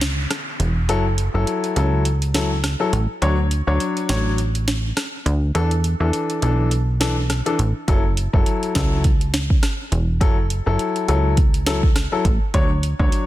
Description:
dancehall; 103 BPM; 4/4; swing 56% on 16ths; F# minor; A4 = 440 Hz
plucky analog bass; bass; 0.0-13.1 s; E1 to E2; -20 LUFS; equal
afro-pop drum kit; drums; 0.0-13.3 s; hi-hat, kick drum, rim click, snare drum; -20 LUFS; equal
downlifter; sound effects; 0.0-3.2 s; -35 LUFS; right 1 dB
warm grand piano; accompaniment; 0.9-13.3 s; E3 to C#5; -23 LUFS; left 3 dB
digital ambience; dense, heavily limited modern master; -17 LUFS; side -15 dB against mid
0.0-13.3 A section
break 0.0-7.9
0.0 F#m7; 3.2 Dmaj7; 5.5 E7sus4; 7.9 F#m7; 12.5 Dmaj7
0.31 | 0.89 1.47 2.06 2.64 | 3.22 3.80 4.38 4.97 | 5.55 6.13 6.71 7.30 | 7.88 8.46 9.04 9.63 | 10.21 10.79 11.38 11.96 | 12.54 13.12

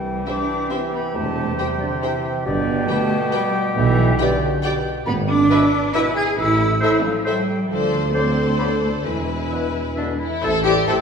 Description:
cinematic, playful, whimsical film cue; 137 BPM; 3/4; straight; C major, A minor from 5.1 s; A4 = 435 Hz
clear clarinet; second line; 0.0-11.0 s; D4 to C5; -29 LUFS; left 2 dB
clear oboe; second line; 0.0-11.0 s; D5 to G5; -30 LUFS; left 1 dB
silver concert flute; second line; 0.0-10.9 s; D5 to G#6; -28 LUFS; left 2 dB
warm bassoon; accompaniment; 0.0-11.0 s; A2 to C4; -28 LUFS; equal
mellow tuba; bass; 0.0-11.0 s; E1 to D2; -26 LUFS; right 1 dB
warm studio double bass section; bass; 0.0-11.0 s; G1 to E2; -26 LUFS; right 2 dB
warm symphonic cello section; bass; 0.0-11.0 s; D3 to G#4; -23 LUFS; right 2 dB
rich chamber violin section; melody; 0.3-10.9 s; B4 to G5; -33 LUFS; left 5 dB
warm symphonic violin section; second line; 0.3-11.0 s; D4 to D5; -27 LUFS; left 5 dB
rich chamber viola section; accompaniment; 0.3-11.0 s; E4 to C5; -28 LUFS; right 1 dB
dark French horn section; sustained chords; 0.3-11.0 s; D3 to C5; -29 LUFS; left 3 dB
wet scoring stage reverb, RT60 1.7 s; heard from further back in the room; -17 LUFS; side -6 dB against mid
0.0-10.4 A section
0.0 C; 1.2 C/E; 2.5 G; 3.8 G/B; 5.1 E7/G#; 6.4 Am; 7.7 Dm7; 9.0 E; 10.4 Am
0.27 0.71 | 1.15 1.59 2.03 | 2.46 2.89 3.33 | 3.76 4.20 4.64 | 5.07 5.51 5.95 | 6.39 6.83 7.26 | 7.70 8.15 8.60 | 9.05 9.51 9.96 | 10.41 10.86

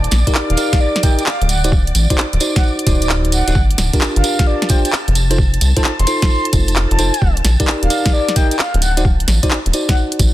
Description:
UK garage, two-step garage; 131 BPM; 4/4; swing 67% on 16ths; A4 = 444 Hz
soft string machine; sustained chords; 0.0-10.3 s; D5 to D6; -29 LUFS; equal; ensemble chorus, sidechain pumping
rubbery square bass; bass; 0.0-10.3 s; D1 to C2; -15 LUFS; equal
garage drum kit; drums; 0.0-10.3 s; handclaps, hi-hat, snare drum; -20 LUFS; equal; small room reverb, soft clipping on snare
tambourine; percussion; 0.1-10.3 s; -26 LUFS; right 4 dB
bell-like tine electric piano; stabs; 0.3-10.3 s; D4 to Eb5; -21 LUFS; equal; digital delay
electronic kick drum; drums; 0.3-10.3 s; -15 LUFS; equal; overdrive, small room reverb
breathy flute-like synth lead; melody; 0.5-10.0 s; D5 to C6; -23 LUFS; equal; wide subtle chorus, cassette tape, digital delay
digital ambience; dense, heavily limited modern master; -13 LUFS; side -15 dB against mid
0.0-10.3 A section
0.0 Ebmaj7; 1.5 D7b9; 3.6 Gm7; 5.2 F7; 7.2 Ebmaj7; 8.8 D7b9
0.35 0.81 1.26 | 1.72 2.18 2.64 3.10 | 3.55 4.01 4.47 4.93 | 5.38 5.84 6.30 6.76 | 7.22 7.67 8.13 8.59 | 9.05 9.51 9.96

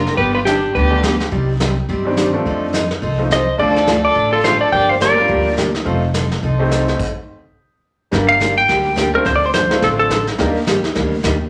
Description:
country, western swing; 212 BPM; 4/4; swing 59% on 8ths; A4 = 439 Hz
clean lap steel guitar; melody; 0.0-1.2, 3.3-5.5, 8.3-10.3 s; G4 to G5; -18 LUFS; equal
clear fiddle; second line; 0.0-1.2, 3.3-5.5 s; D4 to D5; -24 LUFS; equal
upright bass; bass; 0.0-11.5 s; F1 to G2; -24 LUFS; equal
vintage brush drum kit; drums; 0.1-11.5 s; brushed snare drum, crash cymbal, hi-hat, kick drum, snare drum; -26 LUFS; equal
picked steel-string acoustic guitar; accompaniment; 0.2-11.3 s; C3 to D5; -24 LUFS; equal
bright upright piano; accompaniment; 0.9-10.5 s; D3 to C5; -24 LUFS; equal
wet large studio reverb, RT60 0.8 s; -16 LUFS; mono
0.0-8.1 A section; 8.1-11.5 B section
stop 7.0-8.1
0.2 G; 1.3 Cmadd9; 2.5 F7; 3.6 Dm; 4.7 Gm7; 5.9 F7; 7.0 N.C.; 8.1 Gm; 9.3 Dm7; 10.4 Ebmaj7
| 0.18 0.47 0.75 1.04 | 1.32 1.60 1.89 2.17 | 2.46 2.74 3.02 3.31 | 3.59 3.88 4.16 4.45 | 4.73 5.01 5.30 5.58 | 5.86 6.15 6.43 6.71 | 7.00 7.28 7.57 7.85 | 8.13 8.41 8.70 8.98 | 9.26 9.55 9.83 10.11 | 10.40 10.68 10.96 11.24

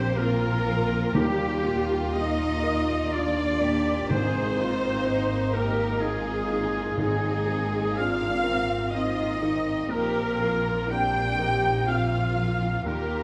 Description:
cinematic; 62 BPM; 3/4; rubato; Ab lydian; A4 = 442 Hz
warm studio violin section; melody; 0.0-13.2 s; G4 to G5; -37 LUFS; equal
bright clarinet; second line; 0.0-13.2 s; G4 to G5; -37 LUFS; equal
clear oboe; second line; 0.0-13.2 s; G4 to G5; -38 LUFS; equal
rich studio violin section; second line; 0.0-13.2 s; G3 to F4; -39 LUFS; equal
clear studio viola section; accompaniment; 0.0-13.2 s; G4 to G5; -32 LUFS; equal
felt-muted upright piano; accompaniment; 0.0-13.2 s; Eb2 to Bb4; -35 LUFS; equal
warm French horn section; sustained chords; 0.0-13.2 s; G3 to G4; -33 LUFS; equal
rich studio cello section; bass; 0.0-13.2 s; C4 to Ab4; -38 LUFS; equal
warm studio double bass section; bass; 0.0-13.2 s; Ab1 to Eb2; -33 LUFS; equal
timpani; percussion; 1.1-8.4 s; Ab2 to Eb3; -33 LUFS; equal
moderate scoring stage reverb, RT60 1.5 s; dark, warm production; -25 LUFS; mono
0.0-13.2 A section
0.0 Bbsus2; 1.1 Ebadd9; 4.1 Abadd9; 9.9 Bbsus2
0.17 | 1.15 2.15 3.13 | 4.10 5.05 6.01 | 6.98 7.97 8.94 | 9.90 10.90 11.88 | 12.86

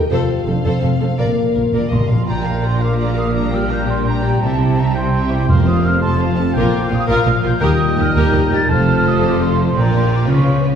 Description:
cinematic, heroic adventure film score; 112 BPM (dotted quarters); 6/8; straight; Bb major; A4 = 440 Hz
rich symphonic violin section; melody; 0.0-10.7 s; C5 to Bb5; -29 LUFS; left 4 dB
dark French horn section; sustained chords; 0.0-10.8 s; G3 to F4; -24 LUFS; left 4 dB
concert harp; arpeggios; 0.0-10.8 s; F2 to F6; -25 LUFS; left 6 dB
warm symphonic violin section; second line; 0.1-10.7 s; F4 to F5; -27 LUFS; left 2 dB
rich studio viola section; accompaniment; 0.1-10.7 s; C4 to Bb4; -25 LUFS; right 1 dB
rich symphonic cello section; bass; 0.1-10.7 s; Eb2 to Db3; -20 LUFS; right 1 dB
warm symphonic double bass section; bass; 0.1-10.7 s; F1 to Eb2; -20 LUFS; right 2 dB
timpani; percussion; 1.2-2.8, 5.5-6.0 s; F2 to Bb2; -21 LUFS; equal
mellow small flute group; second line; 1.7-10.8 s; A5 to A6; -23 LUFS; right 2 dB
warm cor anglais; second line; 2.3-10.6 s; Bb4 to A5; -27 LUFS; right 2 dB
warm trombone section; sustained chords; 2.3-10.7 s; Ab2 to G3; -24 LUFS; right 2 dB
wet scoring stage reverb, RT60 1.9 s; heard from further back in the room; -14 LUFS; side -8 dB against mid
0.0-2.3 A section; 2.3-10.8 A section
timpani fill 1.2-2.3
0.1 F; 1.2 Bb; 3.3 Gm/Bb; 4.4 C; 5.5 Fsus4; 6.0 F; 6.6 Bb; 7.6 Eb; 8.7 F; 9.8 Bb
| 0.11 0.65 | 1.19 1.73 | 2.27 2.81 | 3.35 3.88 | 4.42 4.96 | 5.49 6.03 | 6.56 7.09 | 7.62 8.15 | 8.69 9.22 | 9.76 10.30

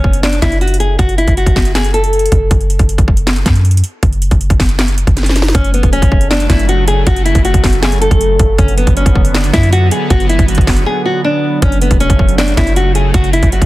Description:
hip hop, trap; 158 BPM; 4/4; half-time; F# minor; A4 = 440 Hz
nylon-string guitar; melody; 0.0-2.5, 5.5-13.7 s; B3 to A4; -16 LUFS; left 1 dB; tape echo
clean 808-style bass; bass; 0.0-13.7 s; E1 to F#2; -13 LUFS; equal
trap drum kit; drums; 0.0-13.7 s; handclaps, hi-hat, kick drum, snare drum; -13 LUFS; equal; overdrive
sweeping resonant pad; sustained chords; 5.5-13.7 s; C#3 to B3; -20 LUFS; right 3 dB; chorus
digital ambience; dense, heavily limited modern master; -9 LUFS; side -17 dB against mid
0.0-5.5 A section; 5.5-13.7 B section
drum fill 5.2-5.5; break 10.9-11.6
0.0 F#m; 2.5 N.C.; 5.5 F#m; 8.6 Bm/F#; 11.6 F#m
0.23 0.61 | 0.99 1.37 1.75 2.13 | 2.51 2.89 3.27 3.65 | 4.03 4.41 4.79 5.17 | 5.55 5.93 6.31 6.69 | 7.07 7.45 7.83 8.21 | 8.59 8.96 9.35 9.72 | 10.10 10.48 10.86 11.24 | 11.62 12.00 12.38 12.76 | 13.14 13.52

